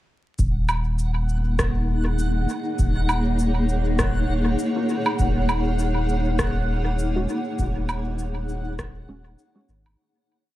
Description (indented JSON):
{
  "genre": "ambient dub",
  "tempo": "100 BPM",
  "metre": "4/4",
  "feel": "swing 57% on 16ths",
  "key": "Eb minor",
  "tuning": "A4 = 440 Hz",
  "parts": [
    { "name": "granular cloud pad", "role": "sustained chords", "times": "1.3-10.0 s", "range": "Bb3 to Gb5", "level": "-26 LUFS", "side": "left 1 dB", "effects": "built-in reverb" },
    { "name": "warm sub bass", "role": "bass", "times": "0.4-10.0 s", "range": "Eb1 to Ab1", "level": "-23 LUFS", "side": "equal", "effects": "none" },
    { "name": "electronic cabasa, woodblock and rim click", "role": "drums", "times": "0.4-10.0 s", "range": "none", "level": "-29 LUFS", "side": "right 1 dB", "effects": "overdrive, dub echo" },
    { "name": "electronic kick drum", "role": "drums", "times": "0.4-8.9 s", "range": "none", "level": "-26 LUFS", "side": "equal", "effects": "none" },
    { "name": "backwards swelling texture", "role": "texture", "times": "1.1-10.0 s", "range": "Gb5", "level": "-35 LUFS", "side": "equal", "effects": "built-in reverb" },
    { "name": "filtered dub chord stab", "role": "stabs", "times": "4.8-9.7 s", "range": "Ab3 to Bb4", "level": "-34 LUFS", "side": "right 1 dB", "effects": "phaser, lush chorus, dub echo" }
  ],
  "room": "little or no reverb",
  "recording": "dark, warm production, vinyl crackle",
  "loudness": "-21 LUFS",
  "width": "side -15 dB against mid",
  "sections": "0.4-10.0 groove",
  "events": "fade-out 6.8-10.0",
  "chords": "0.4 Ebm7; 5.2 Gbsus2/Eb"
}